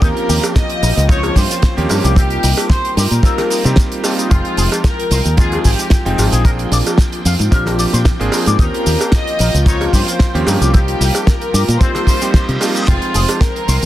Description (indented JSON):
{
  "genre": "nu-disco, nu disco",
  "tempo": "112 BPM",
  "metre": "4/4",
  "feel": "swing 54% on 16ths",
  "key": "F minor",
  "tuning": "A4 = 442 Hz",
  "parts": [
    { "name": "warm studio violin section", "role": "melody", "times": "0.0-13.9 s", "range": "F4 to Eb5", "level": "-22 LUFS", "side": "left 1 dB", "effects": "dub echo" },
    { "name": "bright electric grand piano", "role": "accompaniment", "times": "0.0-13.9 s", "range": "F3 to G5", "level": "-21 LUFS", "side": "right 2 dB", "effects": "sidechain pumping" },
    { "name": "string machine, full ensemble", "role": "sustained chords", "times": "0.0-13.9 s", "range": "F4 to C6", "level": "-25 LUFS", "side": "left 2 dB", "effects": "ensemble chorus, sidechain pumping" },
    { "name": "electric guitar with an envelope filter", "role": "riff", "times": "0.0-13.8 s", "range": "C4 to F5", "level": "-26 LUFS", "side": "left 5 dB", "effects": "lush chorus, dub echo" },
    { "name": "fingered electric bass", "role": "bass", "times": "0.0-13.9 s", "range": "F1 to C3", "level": "-16 LUFS", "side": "equal", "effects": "none" },
    { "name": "damped 70s drum kit", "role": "drums", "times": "0.0-13.9 s", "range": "cabasa, crash cymbal, hi-hat, snare drum", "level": "-20 LUFS", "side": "right 2 dB", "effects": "none" },
    { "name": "kick drum", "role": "drums", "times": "0.0-13.5 s", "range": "none", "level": "-13 LUFS", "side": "equal", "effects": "none" },
    { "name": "cowbell", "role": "percussion", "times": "0.4-13.4 s", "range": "none", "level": "-23 LUFS", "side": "right 1 dB", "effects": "none" },
    { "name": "reverse cymbal", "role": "sound effects", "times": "12.1-12.9 s", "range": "none", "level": "-26 LUFS", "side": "right 1 dB", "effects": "none" }
  ],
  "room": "small room ambience",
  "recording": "dense, heavily limited modern master",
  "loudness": "-12 LUFS",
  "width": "side -14 dB against mid",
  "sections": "0.0-13.9 A section",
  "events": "reverse cymbal 12.1-12.9",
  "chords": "0.0 Eb13; 2.2 Cm7; 4.3 Fm9; 6.5 Bb9; 8.6 Eb13; 10.7 Cm7; 12.9 Fm9"
}